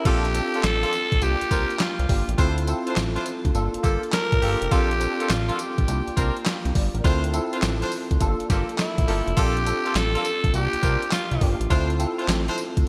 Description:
R&B, new jack swing; 103 BPM; 4/4; swing 66% on 16ths; D minor; A4 = 440 Hz
growling tenor saxophone; melody; 0.0-11.6 s; E4 to Bb4; -29 LUFS; equal
tine electric piano; accompaniment; 0.0-12.9 s; Bb3 to F5; -31 LUFS; equal; ensemble chorus
clear horn section; stabs; 0.0-12.6 s; Bb3 to C5; -33 LUFS; equal
fat analog bass; bass; 0.1-12.8 s; F1 to D2; -28 LUFS; equal
crisp 8-bit digital drum machine; drums; 0.1-12.9 s; crash cymbal, handclaps, hi-hat, kick drum, snare drum, tambourine; -27 LUFS; equal; gated reverb
moderate lush hall reverb, RT60 2.3 s; bright 1980s-style digital production; -23 LUFS; mono
0.1-12.9 A section
0.1 Bbmaj7; 1.2 C9sus4; 2.4 Dm9; 3.5 Gm9; 4.7 Bbmaj7; 5.9 C9sus4; 7.0 Dm9; 8.2 Gm9; 9.4 Bbmaj7; 10.5 C9sus4; 11.7 Dm9

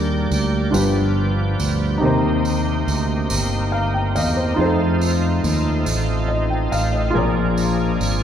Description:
slow gospel; 47 BPM (dotted quarters); 6/8; straight; A4 = 435 Hz
warm baby grand piano; accompaniment; 0.0-8.2 s; G2 to Bb5; -22 LUFS; equal
bright tonewheel organ; sustained chords; 0.0-8.2 s; F3 to D5; -25 LUFS; equal; slow rotary speaker, overdrive, chorus vibrato
fingered electric bass; bass; 0.0-8.2 s; G1 to F2; -20 LUFS; equal
tambourine; percussion; 0.3-8.2 s; -31 LUFS; right 3 dB
wet church reverb, RT60 3.3 s; recorded in a church or concert hall; -17 LUFS; side -9 dB against mid
0.0-8.2 A section
grand piano fill 3.3-4.6
0.0 Ebmaj7; 0.7 G7; 2.0 Cm7; 4.6 F7; 7.2 Bb7

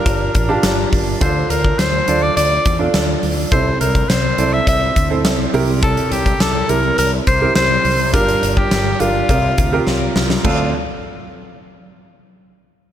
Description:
1980s-style pop; 104 BPM; 4/4; straight; D minor; A4 = 440 Hz
bright alto saxophone; melody; 0.0-10.7 s; F4 to E5; -19 LUFS; left 1 dB; tape echo
warm concert grand piano; accompaniment; 0.0-10.7 s; D2 to A5; -20 LUFS; right 4 dB
fretless electric bass; bass; 0.1-10.7 s; G1 to E2; -21 LUFS; left 1 dB; ensemble chorus
huge arena drum kit; drums; 0.1-10.6 s; crash cymbal, hi-hat, kick drum, snare drum; -19 LUFS; equal
cowbell; percussion; 0.1-10.7 s; -32 LUFS; left 8 dB
light reverb, small room ambience; -13 LUFS; side -10 dB against mid
0.0-10.4 A section; 10.4-12.8 B section
drum fill 9.9-10.4
0.0 Gm7; 1.2 Dm7; 3.5 Am/C; 5.5 C7; 8.1 Gm7; 9.3 C7sus4; 10.4 Dm7

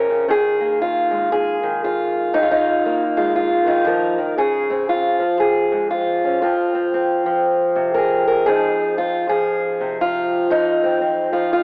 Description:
folk, solo fingerstyle acoustic guitar; 118 BPM; 4/4; swing 62% on 8ths; F minor; A4 = 440 Hz
fingerpicked steel-string acoustic guitar; solo; 0.0-11.6 s; F2 to Bb4; -16 LUFS; equal; cassette tape
moderate spring reverb, RT60 1.9 s, studio ambience; home recording on cassette, telephone sound; -16 LUFS; side -37 dB against mid
0.0-8.5 A section; 8.5-11.6 A section
0.3 Ebsus4; 4.4 Dbmaj7; 6.4 Fm; 8.5 Fm7

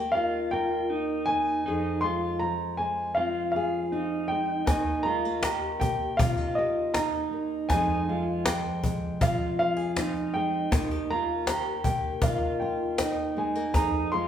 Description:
acoustic folk duo or small band; 79 BPM; 4/4; straight; Eb major; A4 = 436 Hz
dark upright piano; melody; 0.0-14.3 s; Eb5 to C6; -29 LUFS; equal
nylon-string guitar; accompaniment; 0.0-14.3 s; Eb2 to Bb4; -33 LUFS; left 2 dB
electric guitar through a small old amp; arpeggios; 0.0-14.3 s; Eb4 to G4; -31 LUFS; right 2 dB; harmonic tremolo
cajon; percussion; 4.7-14.2 s; -28 LUFS; left 1 dB
wet large studio reverb, RT60 1.1 s; band playing live in one room; -25 LUFS; side -9 dB against mid
0.0-14.3 A section
0.0 Eb; 1.7 Fm; 4.7 Eb; 7.7 Fm; 10.7 Eb; 13.8 Fm

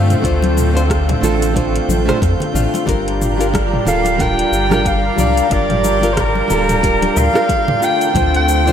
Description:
sunset chillout; 91 BPM; 4/4; swing 57% on 16ths; G minor; A4 = 439 Hz
nylon-string guitar; accompaniment; 0.0-8.7 s; G3 to F5; -20 LUFS; moving between left 5 dB and right 6 dB; auto-pan, diffuse ambient delay
lush unison pad; sustained chords; 0.0-8.7 s; D3 to Bb4; -21 LUFS; equal; chorus
round analog bass; bass; 0.0-8.7 s; D1 to G2; -18 LUFS; equal; tube saturation
drifting glass-harmonics texture; texture; 0.0-8.7 s; G5 to G6; -30 LUFS; right 2 dB; chorus, built-in reverb
deep house drum kit; drums; 0.1-8.7 s; cabasa, hi-hat, rim click, toms; -24 LUFS; right 1 dB; overdrive, studio reverb
electronic kick drum; drums; 0.2-8.3 s; -21 LUFS; equal; overdrive, studio reverb
congas; percussion; 0.4-8.7 s; -25 LUFS; left 3 dB
warm soprano saxophone; melody; 3.9-8.7 s; Bb4 to G5; -17 LUFS; equal; vintage 12-bit sampler grit, diffuse ambient delay
moderate lush hall reverb, RT60 1.9 s; dreamy mix soaked in reverb; -13 LUFS; side -8 dB against mid
0.0-8.7 A section
0.0 Dm7; 2.9 Gm7; 7.8 Dm7

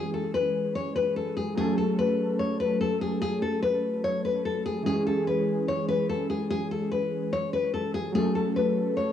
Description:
hip hop; 146 BPM; 4/4; half-time; C# minor; A4 = 440 Hz
nylon-string guitar; melody; 0.0-9.1 s; G#4 to C#5; -27 LUFS; left 4 dB; cassette tape, analog delay
warbly lo-fi synth keys; accompaniment; 0.0-9.1 s; E3 to A4; -28 LUFS; right 1 dB; chorus
light reverb; home recording on cassette, small room ambience; -25 LUFS; side -9 dB against mid
0.0-9.1 A section
0.0 C#m; 1.6 F#m; 4.9 C#m; 8.1 F#m

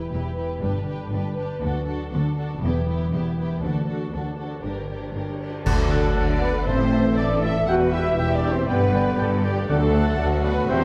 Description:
cinematic, heroic adventure film score; 119 BPM; 4/4; straight; D mixolydian; A4 = 442 Hz
rich symphonic violin section; melody; 0.0-10.8 s; G4 to F#5; -38 LUFS; equal
rich symphonic violin section; second line; 0.0-10.8 s; E4 to D5; -37 LUFS; equal
warm symphonic viola section; accompaniment; 0.0-10.8 s; B3 to F#5; -36 LUFS; equal
concert harp; arpeggios; 0.0-10.8 s; E2 to B4; -32 LUFS; equal
rich symphonic cello section; bass; 0.0-10.8 s; D2 to D3; -30 LUFS; equal
rich symphonic double bass section; bass; 0.0-10.8 s; E1 to D2; -30 LUFS; equal
cymbal swell, clash cymbals and concert bass drum; percussion; 1.6-6.6 s; -32 LUFS; equal
timpani; percussion; 3.6-10.4 s; A2 to D3; -32 LUFS; equal
clear oboe; second line; 5.7-10.8 s; F#5 to A5; -37 LUFS; equal
mellow clarinet; second line; 5.7-10.8 s; D5 to F#5; -38 LUFS; equal
mellow hollow concert flute; second line; 5.7-10.8 s; A4 to F#5; -34 LUFS; equal
dark trombone section; sustained chords; 5.7-10.8 s; D3 to D4; -35 LUFS; equal
mellow French horn section; sustained chords; 5.7-10.8 s; A3 to F#4; -28 LUFS; equal
mellow trumpet; stabs; 5.7-10.8 s; A4 to F#5; -32 LUFS; equal
wet scoring stage reverb, RT60 1.6 s; -23 LUFS; mono
0.0-5.7 A section; 5.7-10.8 B section
band accent 5.7-6.2
0.0 Em; 0.6 G; 1.6 D; 2.6 Em; 3.6 D; 4.6 Gm; 5.7 D; 6.7 Am; 7.7 Em; 8.7 G; 9.7 D

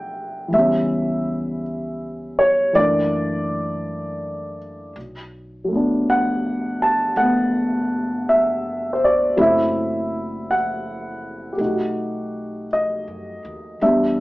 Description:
jazz ballad; 54 BPM; 4/4; swing 67% on 8ths; A4 = 440 Hz
dark upright piano; accompaniment; 0.0-14.2 s; E3 to A5; -19 LUFS; equal
upright bass; bass; 0.0-14.2 s; F#1 to F#2; -38 LUFS; equal
wet studio reverb, RT60 0.5 s; band playing live in one room, AM radio sound; -18 LUFS; side -19 dB against mid
0.0-14.2 A section
0.0 Gmaj9; 0.5 C#m7b5; 2.8 F#7alt; 5.0 Bm7; 9.4 F#m7b5; 11.6 B7b13

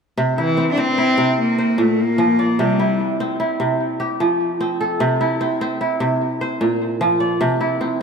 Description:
west african traditional; 100 BPM (dotted quarters); 12/8; straight; C mixolydian; A4 = 435 Hz
kora; arpeggios; 0.2-8.0 s; Bb2 to D5; -18 LUFS; right 1 dB; tape echo
rich cello; melody; 0.4-3.0 s; E3 to D4; -18 LUFS; left 2 dB; tape echo
wet plate reverb, RT60 2.7 s; dreamy mix soaked in reverb; -16 LUFS; side -5 dB against mid
0.2-8.0 A section
0.2 C; 1.4 Bb; 2.6 C; 3.8 F; 5.0 C; 6.2 Bb; 7.4 C

